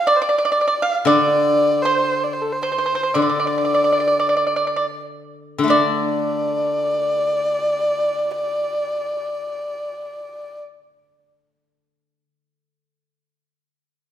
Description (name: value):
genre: chinese traditional, Chinese chamber ensemble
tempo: 41-60 BPM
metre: 2/4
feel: rubato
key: unclear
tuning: A4 = 440 Hz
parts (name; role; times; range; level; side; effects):
- dark erhu; melody; 0.0-10.6 s; A4 to F5; -21 LUFS; equal; none
- pipa; second line; 0.0-10.6 s; C5 to F5; -19 LUFS; right 2 dB; none
- steel-string zither; accompaniment; 1.1-12.2 s; D3 to D4; -23 LUFS; left 3 dB; none
room: moderate recital hall reverb, RT60 1.4 s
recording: minimal, uncompressed stereo recording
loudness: -17 LUFS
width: side -10 dB against mid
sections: 0.0-5.7 A section; 5.7-11.5 B section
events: slowing down 1.1-5.7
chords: none